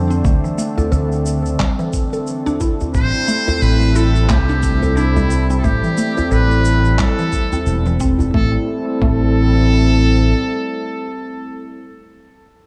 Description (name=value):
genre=organic downtempo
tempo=89 BPM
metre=4/4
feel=swing 58% on 16ths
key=A minor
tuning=A4 = 440 Hz
part: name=warm analog pad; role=sustained chords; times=0.0-11.8 s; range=D3 to A4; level=-23 LUFS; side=equal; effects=chorus, sidechain pumping
part: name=mellow fretless electric bass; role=bass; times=0.0-10.3 s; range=E1 to F2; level=-18 LUFS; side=equal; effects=tube saturation, sidechain pumping
part: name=mallet-like synth pluck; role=arpeggios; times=0.1-9.2 s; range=E3 to A4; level=-25 LUFS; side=equal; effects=chorus, phaser, analog delay
part: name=electronic cabasa and handclaps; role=drums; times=0.1-8.3 s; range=none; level=-32 LUFS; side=equal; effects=none
part: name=electronic kick drum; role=drums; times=0.2-9.2 s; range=none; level=-21 LUFS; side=equal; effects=none
part: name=djembe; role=percussion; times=0.8-8.3 s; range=none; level=-26 LUFS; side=equal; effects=none
part: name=trumpet with metal mute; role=melody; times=2.9-11.8 s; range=E4 to C5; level=-25 LUFS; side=equal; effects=analog delay
room=wet plate reverb, RT60 2.6 s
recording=dreamy mix soaked in reverb, studio ambience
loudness=-16 LUFS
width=mono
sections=0.0-8.3 A section; 8.3-11.0 B section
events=none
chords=0.0 D7(no3); 2.9 Am7